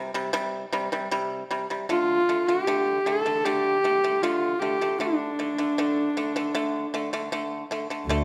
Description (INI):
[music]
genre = mongolian traditional, Mongolian folk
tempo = 77 BPM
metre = 4/4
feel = straight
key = D yu mode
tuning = A4 = 440 Hz
[part]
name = pipa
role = arpeggios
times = 0.0-8.2 s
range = C3 to A3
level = -31 LUFS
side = equal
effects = none
[part]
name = warm horsehead fiddle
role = melody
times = 1.9-7.3 s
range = D4 to A4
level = -26 LUFS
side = equal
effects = none
[part]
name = clear double bass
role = drone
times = 8.1-8.2 s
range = D2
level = -27 LUFS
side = equal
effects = none
[sound]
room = moderate recital hall reverb, RT60 1.4 s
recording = none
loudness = -26 LUFS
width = mono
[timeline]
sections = 0.0-8.1 A section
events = none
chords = 0.0 C5; 1.9 D5